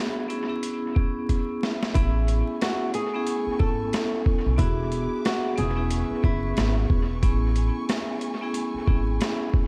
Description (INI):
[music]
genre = hip hop, boom-bap hip-hop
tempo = 91 BPM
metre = 4/4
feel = swing 59% on 16ths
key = A major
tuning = A4 = 441 Hz
[part]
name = vibraphone with hard mallets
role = accompaniment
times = 0.0-9.7 s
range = B3 to A4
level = -31 LUFS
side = equal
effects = dub echo
[part]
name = boom bap sampler-style drum kit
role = drums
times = 0.3-9.7 s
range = hi-hat, kick drum, rim click, snare drum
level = -28 LUFS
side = equal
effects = dub echo
[part]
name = flamenco guitar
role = melody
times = 1.9-6.7 s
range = E4 to A4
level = -33 LUFS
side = equal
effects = dub echo
[part]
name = warm studio string section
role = sustained chords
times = 1.9-9.7 s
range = A3 to D6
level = -42 LUFS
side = equal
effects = none
[part]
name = upright bass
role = bass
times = 2.0-9.2 s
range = E1 to B1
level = -27 LUFS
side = equal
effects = none
[sound]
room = studio reverb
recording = echo-heavy mix, vinyl crackle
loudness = -25 LUFS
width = mono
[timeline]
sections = 0.0-2.0 A section; 2.0-9.7 A section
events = break 0.0-2.0; drum fill 1.3-2.0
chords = 0.3 C#m7; 2.0 Amaj7; 4.6 E7; 5.6 C#m7/E; 7.2 Amaj7